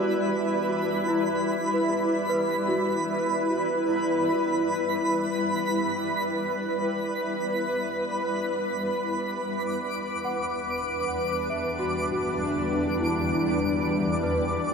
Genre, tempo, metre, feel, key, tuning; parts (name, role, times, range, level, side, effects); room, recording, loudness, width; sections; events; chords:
ambient; free time; E minor; A4 = 441 Hz
granular cloud pad; sustained chords; 0.0-14.7 s; E2 to D5; -26 LUFS; equal; built-in reverb
celesta; arpeggios; 0.0-14.7 s; E4 to A5; -31 LUFS; left 1 dB; diffuse ambient delay
twinkling granular texture; texture; 0.1-14.7 s; B5 to D6; -31 LUFS; right 1 dB; built-in reverb
wet lush hall reverb, RT60 2.7 s; -24 LUFS; side -5 dB against mid
0.0-14.7 A section
fade-out on celesta 0.0-14.7
0.0 Em7; 9.3 G/E